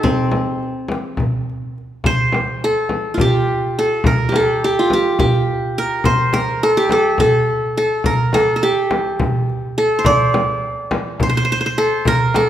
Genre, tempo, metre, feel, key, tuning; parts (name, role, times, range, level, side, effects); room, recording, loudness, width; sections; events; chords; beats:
Turkish makam ensemble; 210 BPM (eighths); 7/8; straight; C makam huseyni; A4 = 441 Hz
qanun; melody; 0.0-12.5 s; C4 to D5-30c; -16 LUFS; equal
darbuka; percussion; 0.0-12.5 s; -21 LUFS; equal
frame drum; percussion; 0.0-12.5 s; -22 LUFS; left 2 dB
moderate recital hall reverb, RT60 1.7 s; recorded in a church or concert hall; -15 LUFS; side -11 dB against mid
0.0-2.0 A section; 2.0-12.5 B section
| 0.04 0.32 0.61 0.90 1.19 1.47 1.76 | 2.04 2.33 2.62 2.90 3.19 3.48 3.76 | 4.05 4.33 4.62 4.91 5.19 5.48 5.77 | 6.05 6.34 6.62 6.91 7.20 7.48 7.77 | 8.05 8.34 8.63 8.91 9.20 9.48 9.77 | 10.06 10.34 10.63 10.92 11.20 11.49 11.77 | 12.06 12.35